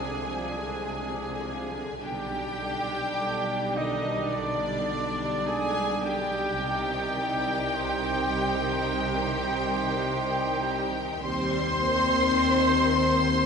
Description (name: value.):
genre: classical.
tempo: 46-55 BPM.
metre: 4/4.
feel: rubato.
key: C minor.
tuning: A4 = 442 Hz.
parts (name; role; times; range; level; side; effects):
clear symphonic violin section; melody; 0.0-13.5 s; D5 to C6; -32 LUFS; left 2 dB; none.
clear cor anglais; second line; 0.0-13.5 s; D4 to C5; -35 LUFS; right 2 dB; none.
rich symphonic violin section; second line; 0.0-13.5 s; D4 to C5; -35 LUFS; left 3 dB; none.
silver concert flute; second line; 0.0-13.5 s; D5 to C6; -35 LUFS; equal; none.
rich symphonic viola section; accompaniment; 0.0-13.5 s; C3 to Eb4; -34 LUFS; equal; none.
bright trombone section; sustained chords; 0.0-13.5 s; F3 to Eb4; -38 LUFS; right 2 dB; none.
mellow French horn section; sustained chords; 0.0-13.5 s; D3 to C4; -34 LUFS; left 6 dB; none.
warm trumpet; stabs; 0.0-13.5 s; C5 to D5; -34 LUFS; right 4 dB; none.
mellow tuba; bass; 0.0-13.5 s; B1 to Eb2; -35 LUFS; right 1 dB; none.
rich symphonic cello section; bass; 0.0-13.5 s; Eb2 to C3; -39 LUFS; right 1 dB; none.
warm symphonic double bass section; bass; 0.0-13.5 s; B1 to Eb2; -40 LUFS; right 3 dB; none.
room: wet church reverb, RT60 3.4 s.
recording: recorded in a church or concert hall, nothing above 10.4 kHz.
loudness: -25 LUFS.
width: side -6 dB against mid.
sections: 0.0-13.5 A section.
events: none.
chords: 0.0 Dm7b5/C; 2.0 G/B; 6.6 Cm; 11.2 Cm/Eb.